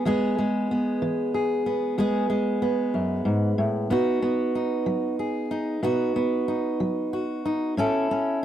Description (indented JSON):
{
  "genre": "blues",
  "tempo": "62 BPM (dotted quarters)",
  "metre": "12/8",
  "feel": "straight",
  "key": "E major",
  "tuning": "A4 = 440 Hz",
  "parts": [
    { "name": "fingerpicked steel-string acoustic guitar", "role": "solo", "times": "0.0-8.4 s", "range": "E2 to A4", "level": "-23 LUFS", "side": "equal", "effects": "none" }
  ],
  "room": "moderate studio reverb, RT60 0.6 s",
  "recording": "none",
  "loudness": "-23 LUFS",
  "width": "side -11 dB against mid",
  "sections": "0.0-8.4 A section",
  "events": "none",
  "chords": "0.0 E; 3.9 B; 7.8 A",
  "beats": "| 0.05 1.01 1.98 2.94 | 3.91 4.87 5.84 6.80 | 7.77"
}